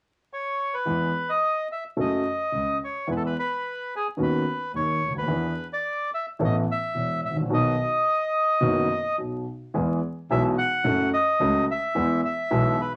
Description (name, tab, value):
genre	tango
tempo	108 BPM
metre	4/4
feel	rubato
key	E major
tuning	A4 = 440 Hz
part	bandoneon	melody	0.3-12.9 s	G#4 to F#5	-27 LUFS	equal	none
part	warm concert grand piano	accompaniment	0.9-12.7 s	E1 to A4	-28 LUFS	equal	none
part	rich double bass	bass	0.9-12.7 s	E1 to E2	-34 LUFS	equal	none
room	moderate studio reverb, RT60 0.5 s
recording	vinyl crackle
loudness	-25 LUFS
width	mono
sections	0.9-9.7 A section; 9.7-13.0 B section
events	break 9.2-9.7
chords	0.0 N.C.; 0.9 E; 2.0 F#m; 3.1 E; 4.2 Badd9/D#; 5.3 E7; 6.4 Asus2; 7.5 B; 9.7 E; 10.9 F#m; 12.0 E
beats	0.30 | 0.86 1.42 1.98 2.53 | 3.09 3.64 4.19 4.74 | 5.29 5.84 6.39 6.95 | 7.50 8.05 8.62 9.18 | 9.75 10.30 10.86 11.41 | 11.96 12.52